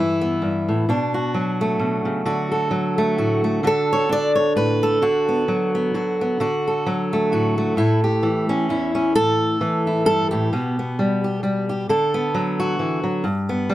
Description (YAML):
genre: folk, solo fingerstyle acoustic guitar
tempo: 131 BPM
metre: 3/4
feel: swing 55% on 8ths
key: unclear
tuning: A4 = 440 Hz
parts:
  - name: fingerpicked steel-string acoustic guitar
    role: solo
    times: 0.0-13.7 s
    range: E2 to D5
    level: -18 LUFS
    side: equal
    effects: none
room: light reverb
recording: none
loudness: -18 LUFS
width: side -14 dB against mid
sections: 0.0-9.1 A section; 9.1-13.7 B section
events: none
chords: 0.0 Em/G; 0.9 Bm7; 2.3 D; 5.0 Bm/D; 6.4 D; 7.8 A; 9.1 A5; 10.5 G/B; 11.9 D6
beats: 0.42 | 0.88 1.34 1.80 | 2.26 2.72 3.18 | 3.64 4.10 4.56 | 5.02 5.48 5.94 | 6.40 6.86 7.32 | 7.77 8.23 8.69 | 9.14 9.60 10.06 | 10.51 10.97 11.42 | 11.88 12.33 12.79 | 13.24 13.70